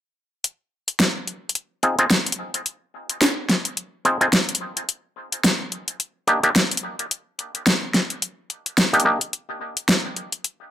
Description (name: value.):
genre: glitch hop.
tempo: 108 BPM.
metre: 4/4.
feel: swing 57% on 16ths.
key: C minor.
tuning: A4 = 440 Hz.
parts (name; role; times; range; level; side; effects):
dubstep drum kit; drums; 0.4-10.6 s; hi-hat, snare drum; -19 LUFS; equal; overdrive.
auto-wah clav; stabs; 1.8-9.2 s; Bb3 to Ab4; -21 LUFS; equal; overdrive, low-pass filter, tape echo.
room: moderate small room reverb, RT60 0.5 s.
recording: none.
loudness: -20 LUFS.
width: side -11 dB against mid.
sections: 0.4-10.7 A section.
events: none.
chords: 0.4 Cmadd11; 4.9 Bbadd11; 9.3 N.C..